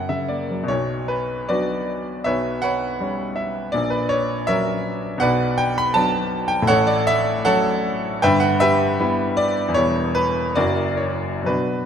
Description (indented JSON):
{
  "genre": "classical, romantic character piece for solo piano",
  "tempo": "59-83 BPM",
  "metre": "2/4",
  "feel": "rubato",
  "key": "B minor",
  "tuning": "A4 = 443 Hz",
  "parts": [
    { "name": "clear grand piano", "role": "solo", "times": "0.0-11.9 s", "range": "E1 to B5", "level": "-18 LUFS", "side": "equal", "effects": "none" }
  ],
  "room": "moderate concert hall reverb, RT60 2.2 s",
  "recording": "none",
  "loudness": "-18 LUFS",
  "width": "side -8 dB against mid",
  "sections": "0.7-11.9 A section",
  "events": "none",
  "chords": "0.0 F#; 0.7 Bm; 2.3 Em69/B; 3.7 F#7/A#; 5.2 Bm; 6.7 F#m/A; 8.2 Em/G; 9.8 Em; 10.6 F#7"
}